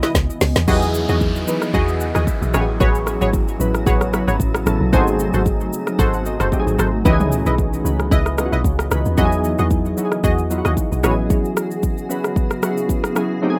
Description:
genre	amapiano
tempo	113 BPM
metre	4/4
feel	swing 55% on 16ths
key	unclear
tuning	A4 = 440 Hz
part	granular cloud pad	sustained chords	0.0-13.6 s	B#2 to D#5	-29 LUFS	equal	built-in reverb, sidechain pumping
part	punchy chord stab	stabs	0.0-11.1 s	E4 to D#5	-25 LUFS	equal	chorus, digital delay
part	deep log drum bass	bass	0.0-11.3 s	F#1 to E2	-23 LUFS	equal	none
part	deep house drum kit	drums	0.0-13.3 s	crash cymbal, hi-hat, kick drum, rim click, shaker, snare drum, toms	-22 LUFS	equal	none
part	glassy digital keys	accompaniment	0.7-13.6 s	E3 to G#5	-24 LUFS	equal	chorus
part	downlifter	sound effects	0.7-4.9 s	none	-36 LUFS	equal	none
room	light reverb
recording	rough home demo mix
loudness	-18 LUFS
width	mono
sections	0.7-13.6 A section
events	drum fill 0.0-0.7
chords	0.0 C#m9; 0.7 Emaj9; 2.5 Amaj13; 4.9 G#7b9; 7.1 C#m9; 9.2 Emaj9; 11.0 Amaj13 (rootless)

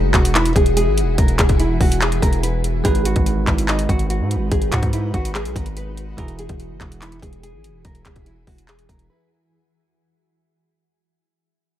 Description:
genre	hip hop, trap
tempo	144 BPM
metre	4/4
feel	half-time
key	unclear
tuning	A4 = 440 Hz
part	nylon-string guitar	melody	0.0-9.3 s	D#4 to B4	-24 LUFS	equal	analog delay
part	granular cloud pad	sustained chords	0.0-9.5 s	E3 to B4	-29 LUFS	equal	built-in reverb
part	distorted 808-style bass	bass	0.0-9.1 s	E1 to G#2	-21 LUFS	equal	distortion
part	trap drum kit	drums	0.1-9.1 s	handclaps, hi-hat, kick drum	-19 LUFS	equal	none
part	bell-like tine electric piano	accompaniment	2.8-9.5 s	E3 to B4	-29 LUFS	right 6 dB	analog delay
room	little or no reverb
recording	echo-heavy mix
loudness	-16 LUFS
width	side -12 dB against mid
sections	0.0-9.5 A section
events	fade-out 0.0-9.5; break 9.1-9.5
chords	0.0 Eadd9; 2.8 G#m7; 6.2 Eadd9

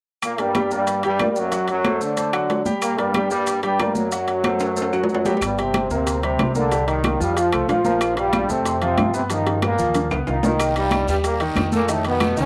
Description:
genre	latin, salsa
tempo	185 BPM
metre	4/4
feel	straight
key	G harmonic minor, G minor from 5.4 s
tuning	A4 = 440 Hz
part	brilliant trombone section	melody	0.2-12.5 s	F#2 to F4	-24 LUFS	equal	cassette tape
part	claves	percussion	0.2-12.4 s	none	-36 LUFS	equal	none
part	congas	percussion	0.2-12.5 s	none	-30 LUFS	equal	none
part	maracas	percussion	0.2-12.5 s	none	-39 LUFS	equal	none
part	timbales	percussion	0.2-12.4 s	none	-30 LUFS	equal	none
part	clear concert grand piano	accompaniment	0.4-12.5 s	Eb3 to G5	-27 LUFS	equal	cassette tape
part	upright bass	bass	5.4-12.5 s	G1 to G2	-29 LUFS	equal	none
part	bongos	percussion	5.4-12.5 s	none	-33 LUFS	equal	none
part	guiro	percussion	10.6-12.5 s	none	-39 LUFS	equal	none
room	moderate spring reverb, RT60 1.8 s, studio reverb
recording	home recording on cassette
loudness	-21 LUFS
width	mono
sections	0.2-5.4 A section; 5.4-12.5 B section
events	drum fill 4.6-5.4, 9.3-10.6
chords	0.2 Gm; 1.5 D7; 2.8 Gm; 4.1 F#dim; 5.4 Gmadd11; 6.7 Cm9; 7.4 F; 8.0 Bbsus2; 9.3 G7alt; 10.6 Cm7; 11.9 Faug7

